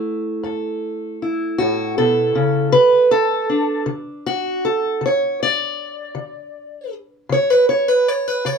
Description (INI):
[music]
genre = acoustic country blues, solo or duo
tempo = 52 BPM (dotted quarters)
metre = 12/8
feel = straight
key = unclear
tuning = A4 = 440 Hz
[part]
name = fingerpicked steel-string acoustic guitar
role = solo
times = 0.0-8.6 s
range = F#2 to D5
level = -17 LUFS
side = equal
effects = none
[sound]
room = moderate small room reverb, RT60 0.6 s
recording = band playing live in one room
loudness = -16 LUFS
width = side -6 dB against mid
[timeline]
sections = 0.0-8.6 A section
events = steel-string acoustic guitar solo 0.0-8.6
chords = 0.0 F#m7; 2.7 D5; 7.3 C#7(no3)